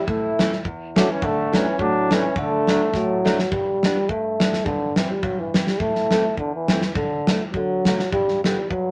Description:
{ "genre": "alpine folk, alpine dance band", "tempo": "105 BPM", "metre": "2/4", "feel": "swing 55% on 8ths, rubato", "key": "D major, G major from 3.5 s", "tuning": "A4 = 440 Hz", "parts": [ { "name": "warm euphonium", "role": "melody", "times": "0.0-8.9 s", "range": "D3 to A3", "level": "-26 LUFS", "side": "equal", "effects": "none" }, { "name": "dark trumpet", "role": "second line", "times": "0.0-3.2 s", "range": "A3 to E4", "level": "-26 LUFS", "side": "equal", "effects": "none" }, { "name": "fingerpicked old ladder-braced acoustic guitar", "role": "accompaniment", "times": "0.1-8.9 s", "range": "E2 to D4", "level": "-29 LUFS", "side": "equal", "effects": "none" }, { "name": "gated 80s drum kit", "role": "drums", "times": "0.1-8.8 s", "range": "kick drum, snare drum", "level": "-25 LUFS", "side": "equal", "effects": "none" } ], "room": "light reverb", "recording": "none", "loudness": "-21 LUFS", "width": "mono", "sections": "0.0-3.5 A section; 3.5-8.9 B section", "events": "drum fill 2.9-3.5", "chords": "0.0 A; 1.2 D; 3.5 Gadd9; 4.7 C/G; 5.8 Am; 7.0 Dsus4; 7.5 D; 8.1 G" }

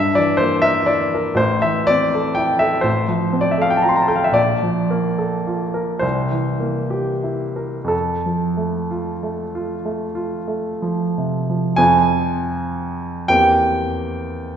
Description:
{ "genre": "classical, romantic nocturne for solo piano", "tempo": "29-42 BPM (dotted quarters)", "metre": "6/8", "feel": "rubato", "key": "F major", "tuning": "A4 = 438 Hz", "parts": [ { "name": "warm baby grand piano", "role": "solo", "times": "0.0-14.6 s", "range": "A1 to C6", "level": "-17 LUFS", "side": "equal", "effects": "none" } ], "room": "wet scoring stage reverb, RT60 1.8 s", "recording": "heard from further back in the room, nothing above 7.9 kHz", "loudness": "-17 LUFS", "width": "side -8 dB against mid", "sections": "0.0-11.8 A section; 11.8-14.6 B section", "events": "none", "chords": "0.0 Edim/G; 1.4 Am; 2.9 F/A; 4.4 Bbmaj7; 6.0 C7; 7.9 F; 11.8 Fm; 13.3 C7/E" }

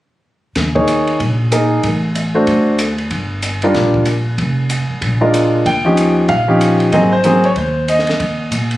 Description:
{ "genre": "jazz piano trio", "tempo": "189 BPM", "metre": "4/4", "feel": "swing 62% on 8ths", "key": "unclear", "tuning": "A4 = 441 Hz", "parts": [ { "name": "upright bass", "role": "bass", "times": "0.6-8.8 s", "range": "F1 to Bb2", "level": "-19 LUFS", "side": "equal", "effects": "none" }, { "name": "compact cocktail drum kit", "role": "drums", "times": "0.6-8.8 s", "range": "hi-hat, kick drum, ride cymbal, snare drum", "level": "-22 LUFS", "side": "equal", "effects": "none" }, { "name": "clear concert grand piano", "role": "melody", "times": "0.8-8.5 s", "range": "F3 to G5", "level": "-13 LUFS", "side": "equal", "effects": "plate reverb" } ], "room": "moderate large studio reverb, RT60 1.0 s", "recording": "recorded on a phone in the room, studio ambience, compression", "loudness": "-12 LUFS", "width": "side -16 dB against mid", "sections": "0.6-5.7 A section; 5.7-8.8 B section", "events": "none", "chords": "0.6 Eb7sus4; 1.8 Asus4; 2.5 D7; 3.1 Gm7; 4.4 N.C.; 5.0 Bb7; 5.7 Eb9; 6.9 Ab9; 8.2 Eb5" }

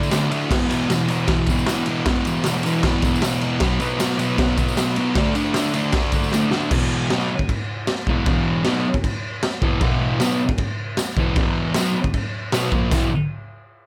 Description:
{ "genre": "garage rock duo or trio", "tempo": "155 BPM", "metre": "4/4", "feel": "straight", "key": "unclear", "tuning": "A4 = 439 Hz", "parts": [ { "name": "thick fuzz guitar", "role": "riff", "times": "0.0-13.1 s", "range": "E2 to D4", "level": "-23 LUFS", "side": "equal", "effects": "distortion" }, { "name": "tambourine", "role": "percussion", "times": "0.0-6.7, 10.2-13.1 s", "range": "none", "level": "-38 LUFS", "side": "equal", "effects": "none" }, { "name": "raw garage drum kit", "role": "drums", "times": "0.1-13.0 s", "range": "crash cymbal, kick drum, ride cymbal, snare drum", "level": "-24 LUFS", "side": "equal", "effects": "none" } ], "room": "light reverb", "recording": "none", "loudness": "-21 LUFS", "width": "mono", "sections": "0.0-6.7 A section; 6.7-12.9 B section", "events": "drum fill 6.3-6.7", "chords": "0.5 E5; 3.6 B5; 5.2 D5; 6.7 E5" }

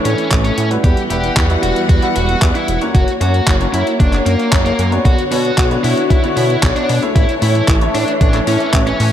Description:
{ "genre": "italo disco", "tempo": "114 BPM", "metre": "4/4", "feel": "straight", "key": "B minor", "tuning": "A4 = 439 Hz", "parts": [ { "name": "rich chamber string section", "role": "sustained chords", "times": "0.0-9.1 s", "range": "D3 to F#5", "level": "-19 LUFS", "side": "left 2 dB", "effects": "none" }, { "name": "clear concert grand piano", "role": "stabs", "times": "0.0-9.1 s", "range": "G3 to F#5", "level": "-22 LUFS", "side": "equal", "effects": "tape echo" }, { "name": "bluesy overdriven lead guitar", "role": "melody", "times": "0.1-9.1 s", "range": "A#3 to G4", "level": "-20 LUFS", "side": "equal", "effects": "distortion, tape echo" }, { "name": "chorused synth bass", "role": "bass", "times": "0.1-9.1 s", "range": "E1 to B2", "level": "-18 LUFS", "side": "equal", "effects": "tube saturation" }, { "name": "clean 12-bit digital drum machine", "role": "drums", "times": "0.1-9.1 s", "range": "handclaps, hi-hat", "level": "-22 LUFS", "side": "equal", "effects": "overdrive" }, { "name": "electronic kick drum", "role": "drums", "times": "0.3-8.8 s", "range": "none", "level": "-14 LUFS", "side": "equal", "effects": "overdrive" } ], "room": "moderate plate reverb, RT60 1.6 s, digital ambience", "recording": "dreamy mix soaked in reverb", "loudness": "-12 LUFS", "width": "side -10 dB against mid", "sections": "0.0-9.1 A section", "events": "none", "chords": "0.0 A; 0.8 Emadd9; 2.9 F#; 5.1 Bmadd9; 7.2 A" }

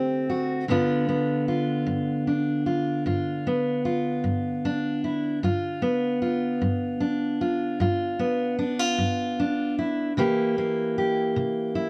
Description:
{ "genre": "blues", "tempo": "51 BPM (dotted quarters)", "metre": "12/8", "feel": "straight", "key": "G mixolydian", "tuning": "A4 = 440 Hz", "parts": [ { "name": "fingerpicked steel-string acoustic guitar", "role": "solo", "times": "0.0-11.9 s", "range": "D2 to G4", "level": "-26 LUFS", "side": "equal", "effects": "none" } ], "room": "moderate booth ambience, RT60 0.2 s", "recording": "dark, warm production", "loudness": "-26 LUFS", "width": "mono", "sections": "0.7-11.9 A section", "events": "none", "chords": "0.0 D7; 0.7 G7; 10.2 C7" }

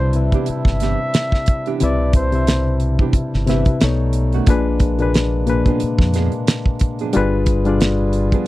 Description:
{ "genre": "R&B, neo-soul", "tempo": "90 BPM", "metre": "4/4", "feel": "swing 56% on 16ths", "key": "unclear", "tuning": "A4 = 440 Hz", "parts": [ { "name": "warm flugelhorn", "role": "melody", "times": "0.0-2.8 s", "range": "C5 to E5", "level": "-25 LUFS", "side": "equal", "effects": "none" }, { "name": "barky reed electric piano", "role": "accompaniment", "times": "0.0-8.5 s", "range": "Bb2 to E5", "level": "-20 LUFS", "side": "left 3 dB", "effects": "overdrive" }, { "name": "hand-pumped harmonium", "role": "sustained chords", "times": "0.0-8.5 s", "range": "C3 to B4", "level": "-31 LUFS", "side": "right 5 dB", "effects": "none" }, { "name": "deep dub fingered electric bass", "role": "bass", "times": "0.0-8.3 s", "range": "G1 to F2", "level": "-19 LUFS", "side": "equal", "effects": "none" }, { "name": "damped 70s drum kit", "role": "drums", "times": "0.1-8.5 s", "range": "hi-hat, kick drum, snare drum", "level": "-16 LUFS", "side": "equal", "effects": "none" }, { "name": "nylon-string guitar", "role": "second line", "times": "0.3-8.5 s", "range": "D#3 to Ab4", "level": "-24 LUFS", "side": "right 10 dB", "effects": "none" } ], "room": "little or no reverb", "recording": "dry, close 1970s-style studio recording", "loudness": "-15 LUFS", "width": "side -16 dB against mid", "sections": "0.0-8.5 A section", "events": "none", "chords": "0.0 Cmaj9; 3.8 B9; 4.5 Bb7b9; 7.1 G7b9" }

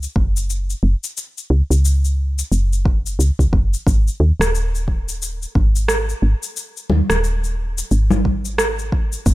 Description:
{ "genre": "organic downtempo", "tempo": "89 BPM", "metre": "4/4", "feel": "swing 60% on 16ths", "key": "unclear", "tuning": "A4 = 438 Hz", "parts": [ { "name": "woody FM bass", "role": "bass", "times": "0.0-9.3 s", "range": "D#1 to D#2", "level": "-17 LUFS", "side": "equal", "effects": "tube saturation, sidechain pumping" }, { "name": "electronic shaker, rim click and congas", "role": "drums", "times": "0.0-9.3 s", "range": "none", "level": "-22 LUFS", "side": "equal", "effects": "overdrive" }, { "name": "electronic kick drum", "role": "drums", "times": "0.2-9.3 s", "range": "none", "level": "-18 LUFS", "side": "equal", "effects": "none" } ], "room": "little or no reverb", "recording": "none", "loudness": "-16 LUFS", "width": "side -18 dB against mid", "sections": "0.0-9.3 A section", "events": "none", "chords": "none" }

